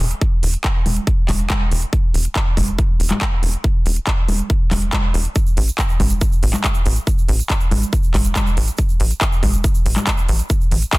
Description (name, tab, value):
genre	uplifting trance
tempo	140 BPM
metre	4/4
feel	straight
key	unclear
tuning	A4 = 440 Hz
part	tight sequencer bass	bass	0.0-10.8 s	E1 to A1	-18 LUFS	equal	sidechain pumping
part	big-room dance drum kit	drums	0.0-11.0 s	congas, handclaps, hi-hat	-22 LUFS	equal	none
part	electronic kick drum	drums	0.2-11.0 s	none	-18 LUFS	equal	none
part	egg shaker	percussion	5.4-11.0 s	none	-32 LUFS	right 5 dB	none
room	digital ambience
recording	dense, heavily limited modern master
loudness	-15 LUFS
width	side -22 dB against mid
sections	0.0-11.0 A section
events	none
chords	none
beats	| 0.21 0.64 1.07 1.50 | 1.93 2.36 2.79 3.21 | 3.64 4.07 4.50 4.93 | 5.36 5.79 6.21 6.64 | 7.07 7.50 7.93 8.36 | 8.79 9.21 9.64 10.07 | 10.50 10.93